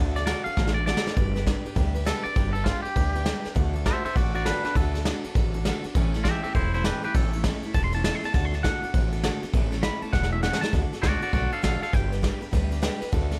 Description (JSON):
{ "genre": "rockabilly", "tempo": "201 BPM", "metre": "4/4", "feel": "swing 63% on 8ths", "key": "D major", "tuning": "A4 = 437 Hz", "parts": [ { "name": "picked steel-string acoustic guitar", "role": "accompaniment", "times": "0.0-13.4 s", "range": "A2 to B4", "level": "-35 LUFS", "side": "equal", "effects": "plate reverb" }, { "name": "upright bass", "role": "bass", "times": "0.0-13.4 s", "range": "E1 to D2", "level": "-30 LUFS", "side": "equal", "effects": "none" }, { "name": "twangy electric guitar", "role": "melody", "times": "0.2-12.5 s", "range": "D4 to C6", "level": "-32 LUFS", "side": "equal", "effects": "plate reverb, tape echo" }, { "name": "soft brush drum kit", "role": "drums", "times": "0.2-13.4 s", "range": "kick drum, ride cymbal, snare drum", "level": "-29 LUFS", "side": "equal", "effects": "none" } ], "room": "little or no reverb", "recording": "none", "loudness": "-25 LUFS", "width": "mono", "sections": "0.0-10.7 A section; 10.7-13.4 B section", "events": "clean electric guitar solo 0.0-10.7; drum fill 0.6-1.2, 10.1-10.7", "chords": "0.0 D; 1.2 G; 3.6 D; 6.0 A; 8.3 D; 9.5 A; 10.7 D; 11.9 G" }